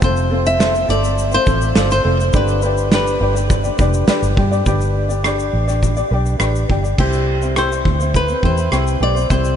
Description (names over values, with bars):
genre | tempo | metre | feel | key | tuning
acoustic pop | 103 BPM | 4/4 | straight | C major | A4 = 440 Hz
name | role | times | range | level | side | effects
flamenco guitar | melody | 0.0-9.6 s | G4 to E5 | -20 LUFS | equal | tape echo
ukulele | accompaniment | 0.0-9.6 s | C4 to D5 | -21 LUFS | left 1 dB | none
vintage muted fingered electric bass | bass | 0.0-9.6 s | F1 to G2 | -18 LUFS | equal | none
loose indie drum kit | drums | 0.0-9.6 s | crash cymbal, kick drum, rim click, shaker, snare drum | -20 LUFS | right 1 dB | none
room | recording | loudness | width
moderate huge ambient reverb, RT60 8.1 s | dreamy mix soaked in reverb, nothing above 10.4 kHz | -14 LUFS | side -9 dB against mid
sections
0.0-4.7 A section; 4.7-7.0 B section; 7.0-9.6 C section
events
none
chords
0.0 F; 2.3 G; 7.0 C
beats
| 0.02 0.60 1.18 1.76 | 2.34 2.92 3.50 4.08 | 4.66 5.24 5.82 6.40 | 6.98 7.57 8.15 8.73 | 9.31